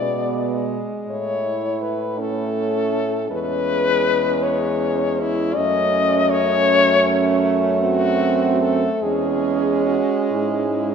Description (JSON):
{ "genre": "classical, lyrical piece for horn quartet", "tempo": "45-56 BPM (dotted quarters)", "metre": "6/8", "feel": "rubato", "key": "C# minor from 3.3 s", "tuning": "A4 = 440 Hz", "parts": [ { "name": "warm French horn", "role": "melody", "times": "0.0-10.9 s", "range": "E4 to D#5", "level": "-21 LUFS", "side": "left 5 dB", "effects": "none" }, { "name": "warm French horn", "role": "second line", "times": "0.0-10.9 s", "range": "B3 to E4", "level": "-24 LUFS", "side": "right 9 dB", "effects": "none" }, { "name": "warm French horn", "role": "accompaniment", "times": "0.0-10.9 s", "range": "G#3 to A3", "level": "-24 LUFS", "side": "equal", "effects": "none" }, { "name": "mellow French horn", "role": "bass", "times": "0.0-10.9 s", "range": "E2 to B2", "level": "-25 LUFS", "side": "right 3 dB", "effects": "none" } ], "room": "wet church reverb, RT60 2.6 s", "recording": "none", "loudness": "-17 LUFS", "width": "side -7 dB against mid", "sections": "0.0-10.9 A section", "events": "none", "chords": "0.0 Bm6; 1.1 Amaj7; 3.3 C#m/E; 5.6 F#m; 9.0 C#m/E; 10.3 C#m/G#", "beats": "0.00 | 1.10 2.19 | 3.31 4.43 | 5.57 6.68 | 7.81 9.03 | 10.31" }